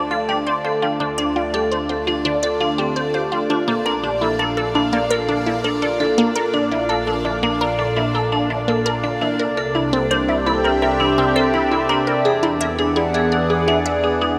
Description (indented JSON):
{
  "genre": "ambient, sequencer-driven space music",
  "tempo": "84 BPM",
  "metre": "4/4",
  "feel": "straight",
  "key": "unclear",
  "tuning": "A4 = 440 Hz",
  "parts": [
    { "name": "phased analog pad", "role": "sustained chords", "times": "0.0-14.4 s", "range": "Bb2 to A5", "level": "-26 LUFS", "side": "equal", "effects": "phaser, chorus" },
    { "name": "vibraphone with hard mallets", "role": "arpeggios", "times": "0.0-14.3 s", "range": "C4 to D5", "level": "-24 LUFS", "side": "equal", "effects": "tape echo" },
    { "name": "resonant blip pluck", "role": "riff", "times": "0.0-14.4 s", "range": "Bb3 to E5", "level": "-24 LUFS", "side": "equal", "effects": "phaser, tape echo" },
    { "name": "fat analog bass", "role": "bass", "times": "0.0-14.4 s", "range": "Bb1 to E2", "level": "-32 LUFS", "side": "equal", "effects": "none" },
    { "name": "bubbling stepped-filter texture", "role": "texture", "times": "0.0-14.4 s", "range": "D4 to D5", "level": "-33 LUFS", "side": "equal", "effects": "chorus, built-in reverb" }
  ],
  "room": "wet huge ambient reverb, RT60 8.5 s",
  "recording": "none",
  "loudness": "-19 LUFS",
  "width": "mono",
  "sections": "0.0-14.4 A section",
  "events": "fade-in on analog synth pad 0.0-14.4; fade-in on analog synth bass 0.0-14.4; fade-in on synth texture 0.0-14.4",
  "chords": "0.0 Dm; 3.7 Bb; 9.4 C; 12.3 E7"
}